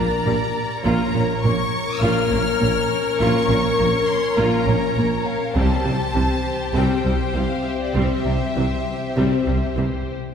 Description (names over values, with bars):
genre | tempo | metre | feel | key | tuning
cinematic | 101 BPM | 4/4 | straight | unclear | A4 = 439 Hz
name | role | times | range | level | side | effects
warm symphonic violin section | melody | 0.0-9.7 s | D5 to F6 | -27 LUFS | left 2 dB | none
rich symphonic violin section | second line | 0.0-10.1 s | G4 to D5 | -28 LUFS | left 2 dB | none
warm symphonic viola section | accompaniment | 0.0-9.9 s | E3 to F4 | -26 LUFS | equal | none
warm French horn section | sustained chords | 0.0-10.0 s | C4 to Bb4 | -25 LUFS | left 4 dB | none
mellow tuba | bass | 0.0-9.9 s | Bb1 to C2 | -26 LUFS | right 2 dB | none
rich symphonic double bass section | bass | 0.0-9.9 s | Bb1 to C2 | -25 LUFS | right 2 dB | none
warm symphonic cello section | bass | 0.0-9.8 s | Bb2 to C3 | -27 LUFS | right 1 dB | none
room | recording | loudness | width
wet scoring stage reverb, RT60 2.0 s | heard from further back in the room | -18 LUFS | side -7 dB against mid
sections
0.0-10.3 A section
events
none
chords
0.0 Gm (rootless); 0.8 Bbm; 5.6 C